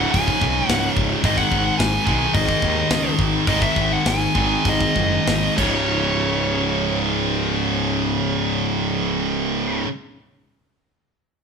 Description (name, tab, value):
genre	heavy metal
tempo	93-109 BPM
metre	4/4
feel	straight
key	unclear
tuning	A4 = 439 Hz
part	nasal lead guitar with a parked wah	melody	0.0-9.8 s	C#5 to G#5	-24 LUFS	equal	overdrive
part	high-gain distorted guitar	riff	0.0-9.9 s	C#2 to G#3	-24 LUFS	left 7 dB	distortion
part	high-gain distorted guitar	riff	0.0-9.9 s	C#2 to G#3	-23 LUFS	right 9 dB	distortion
part	fuzz picked electric bass	bass	0.0-9.8 s	C#1 to D#2	-25 LUFS	equal	overdrive
part	tight metal drum kit	drums	0.1-5.7 s	crash cymbal, hi-hat, kick drum, snare drum	-25 LUFS	left 1 dB	none
room	moderate large studio reverb, RT60 1.1 s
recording	band playing live in one room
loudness	-17 LUFS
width	side -6 dB against mid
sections	0.0-5.9 A section; 5.9-11.1 B section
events	slowing down 1.2-5.9; drum fill 5.6-5.9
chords	0.0 C#5; 1.2 G#5; 5.6 C#5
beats	0.14 0.69 | 1.24 1.79 2.34 2.90 | 3.47 4.06 4.66 5.27 | 5.90 6.55 7.19 7.84 | 8.48 9.13 9.77